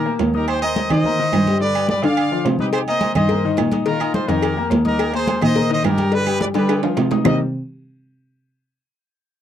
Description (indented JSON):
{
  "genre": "latin, salsa",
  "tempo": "212 BPM",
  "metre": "4/4",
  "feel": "straight",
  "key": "C minor",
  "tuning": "A4 = 441 Hz",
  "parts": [
    { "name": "bright trumpet section", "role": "melody", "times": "0.0-7.4 s", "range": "F4 to F5", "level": "-22 LUFS", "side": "right 1 dB", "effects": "none" },
    { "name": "rich cello", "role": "bass", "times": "0.0-7.4 s", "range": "Eb2 to G3", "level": "-21 LUFS", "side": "right 1 dB", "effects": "none" },
    { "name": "bright concert grand piano", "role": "accompaniment", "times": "0.1-7.4 s", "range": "C3 to Eb6", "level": "-23 LUFS", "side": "left 10 dB", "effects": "none" },
    { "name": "congas", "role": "percussion", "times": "0.1-7.3 s", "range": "none", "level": "-25 LUFS", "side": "right 1 dB", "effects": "none" },
    { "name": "timbales and agogo bells", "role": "percussion", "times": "0.2-7.3 s", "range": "none", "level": "-26 LUFS", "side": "right 9 dB", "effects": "none" },
    { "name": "claves", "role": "percussion", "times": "0.5-7.3 s", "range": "none", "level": "-32 LUFS", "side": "right 27 dB", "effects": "none" },
    { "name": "cowbell and bongos", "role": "percussion", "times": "2.7-7.3 s", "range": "none", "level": "-25 LUFS", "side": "left 7 dB", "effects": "none" }
  ],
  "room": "little or no reverb",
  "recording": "dry, close 1970s-style studio recording",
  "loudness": "-16 LUFS",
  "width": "side -10 dB against mid",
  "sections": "0.0-7.3 A section; 7.3-8.4 B section",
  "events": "drum fill 6.7-7.3",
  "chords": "0.5 Eb; 1.6 G7; 2.7 Cm7; 3.9 Bbsus4; 5.0 Eb; 6.1 G7; 7.3 Cm7"
}